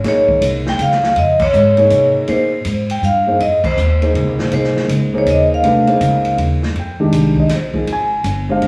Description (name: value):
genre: modal jazz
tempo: 161 BPM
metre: 3/4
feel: swing 65% on 8ths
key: unclear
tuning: A4 = 441 Hz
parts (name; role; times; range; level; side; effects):
- dark concert grand piano; accompaniment; 0.0-8.7 s; Eb3 to Ab5; -20 LUFS; equal; none
- upright bass; bass; 0.0-8.7 s; G1 to C3; -20 LUFS; equal; none
- swinging big-band drum kit; drums; 0.0-8.7 s; crash cymbal, hi-hat, kick drum, ride cymbal, snare drum; -28 LUFS; equal; none
- vibraphone with medium hard mallets; melody; 0.1-6.4 s; C5 to G5; -17 LUFS; equal; none
room: wet club reverb, RT60 0.8 s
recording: heard from further back in the room, studio reverb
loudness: -15 LUFS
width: mono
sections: 0.0-6.8 A section; 6.8-8.7 B section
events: band accent 1.3, 3.6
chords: 0.0 Bbm9; 2.3 Fm7; 6.8 Fm11